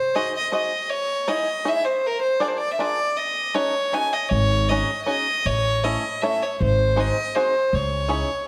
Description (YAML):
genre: musette waltz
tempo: 158 BPM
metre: 3/4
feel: straight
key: unclear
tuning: A4 = 443 Hz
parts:
  - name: rich violin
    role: melody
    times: 0.0-8.5 s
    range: A#4 to G#5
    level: -24 LUFS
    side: equal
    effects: none
  - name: bluegrass banjo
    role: accompaniment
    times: 0.2-8.3 s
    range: A3 to D#5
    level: -29 LUFS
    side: equal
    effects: none
  - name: upright bass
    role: bass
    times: 4.3-8.2 s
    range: G#1 to C#2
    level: -26 LUFS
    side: equal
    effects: none
room: moderate concert hall reverb, RT60 2.1 s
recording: none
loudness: -22 LUFS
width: mono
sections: 0.0-8.5 A section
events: none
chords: 0.0 G#7; 0.9 C#madd9; 2.0 A#7; 3.2 D#m7b5; 4.3 G#7sus4; 5.5 A; 6.6 G#7; 7.7 C#madd9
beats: 0.14 0.52 | 0.91 1.28 1.66 | 2.04 2.42 2.79 | 3.17 3.55 3.93 | 4.32 4.70 5.08 | 5.46 5.84 6.22 | 6.60 6.98 7.35 | 7.73 8.10